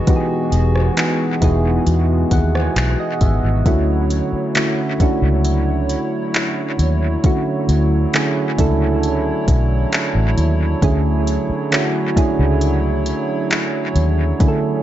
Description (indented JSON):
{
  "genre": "contemporary R&B",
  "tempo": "67 BPM",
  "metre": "4/4",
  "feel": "straight",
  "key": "unclear",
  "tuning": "A4 = 440 Hz",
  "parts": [
    { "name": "soft electric-piano-like synth keys", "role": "accompaniment", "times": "0.0-14.8 s", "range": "D3 to G#5", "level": "-19 LUFS", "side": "right 2 dB", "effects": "chorus, dub echo" },
    { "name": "hollow soft pad", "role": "sustained chords", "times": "0.0-14.8 s", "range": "B2 to C#5", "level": "-26 LUFS", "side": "equal", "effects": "chorus, sidechain pumping" },
    { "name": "smooth R&B drum kit", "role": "drums", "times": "0.1-14.6 s", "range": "handclaps, hi-hat, kick drum, rim click", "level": "-20 LUFS", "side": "equal", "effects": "dub echo" },
    { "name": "vintage muted fingered electric bass", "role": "bass", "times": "0.5-14.3 s", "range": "E1 to E2", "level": "-17 LUFS", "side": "equal", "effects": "none" }
  ],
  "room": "digital ambience",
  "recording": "echo-heavy mix, nothing above 7.7 kHz",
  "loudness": "-15 LUFS",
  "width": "side -12 dB against mid",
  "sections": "0.0-14.8 A section",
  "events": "synth keys fill 1.9-3.7",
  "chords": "0.0 Emaj9; 3.7 Dmaj9"
}